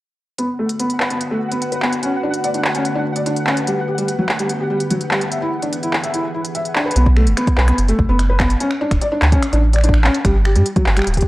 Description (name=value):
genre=IDM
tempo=146 BPM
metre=4/4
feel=straight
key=B minor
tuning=A4 = 442 Hz
part: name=glassy FM pad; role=sustained chords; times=0.7-6.9 s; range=D3 to B4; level=-25 LUFS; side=equal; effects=ensemble chorus, built-in reverb, vintage 12-bit sampler grit
part: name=felt-muted upright piano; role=arpeggios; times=0.4-11.2 s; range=F#3 to E5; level=-20 LUFS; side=equal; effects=low-pass filter, analog delay
part: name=organic electronic drum kit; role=drums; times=0.4-11.3 s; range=finger snaps, handclaps, hi-hat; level=-22 LUFS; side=equal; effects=overdrive
part: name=pulsing gated texture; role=texture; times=0.7-7.0 s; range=F#5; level=-28 LUFS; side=left 1 dB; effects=chorus, built-in reverb
part: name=warm sub bass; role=bass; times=7.0-11.2 s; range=D1 to G2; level=-14 LUFS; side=equal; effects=none
part: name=electronic kick drum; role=drums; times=7.1-11.3 s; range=none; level=-18 LUFS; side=equal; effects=overdrive
room=little or no reverb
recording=dry, gritty hardware recording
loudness=-15 LUFS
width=side -18 dB against mid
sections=0.4-7.0 A section; 7.0-11.3 B section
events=none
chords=0.4 Bm; 2.0 D6; 3.7 G; 5.3 E; 7.0 B5; 8.6 D5; 10.2 G5